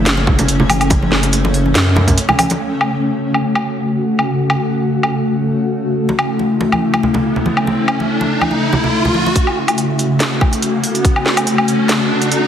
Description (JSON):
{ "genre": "deep dubstep", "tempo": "142 BPM", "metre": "4/4", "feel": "swing 54% on 16ths, half-time", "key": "F# minor", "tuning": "A4 = 440 Hz", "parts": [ { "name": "granular cloud pad", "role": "sustained chords", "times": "0.0-12.5 s", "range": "C#3 to F#4", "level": "-16 LUFS", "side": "left 1 dB", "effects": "built-in reverb" }, { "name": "saturated sub bass", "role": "bass", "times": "0.0-2.2 s", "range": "F#1 to F#2", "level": "-16 LUFS", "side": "equal", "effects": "none" }, { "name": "garage drum kit", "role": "drums", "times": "0.1-12.4 s", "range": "hi-hat, snare drum, woodblock", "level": "-18 LUFS", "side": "equal", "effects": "high-pass filter on hats, low-pass filter on hats, high-pass filter on snare, low-pass filter on snare, high-pass filter on perc, low-pass filter on perc, high-pass filter on room, low-pass filter on room" }, { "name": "congas", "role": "percussion", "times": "0.2-2.6, 6.1-9.3 s", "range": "none", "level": "-20 LUFS", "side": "right 2 dB", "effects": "dub echo" }, { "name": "electronic kick drum", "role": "drums", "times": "0.3-2.2, 9.4-11.1 s", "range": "none", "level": "-15 LUFS", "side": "equal", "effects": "none" }, { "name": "riser", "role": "sound effects", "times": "6.9-12.5 s", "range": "none", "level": "-21 LUFS", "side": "right 1 dB", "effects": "none" } ], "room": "wet echo chamber reverb, RT60 2.2 s", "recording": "heavily compressed radio sound, multiband compression", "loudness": "-13 LUFS", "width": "side -9 dB against mid", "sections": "0.0-2.6 A section; 2.6-9.4 B section; 9.4-12.5 C section", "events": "drop 0.0-2.6; break 2.2-2.6; riser 6.9-9.4, 9.4-12.5; build-up 9.4-12.5", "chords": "0.0 F#m" }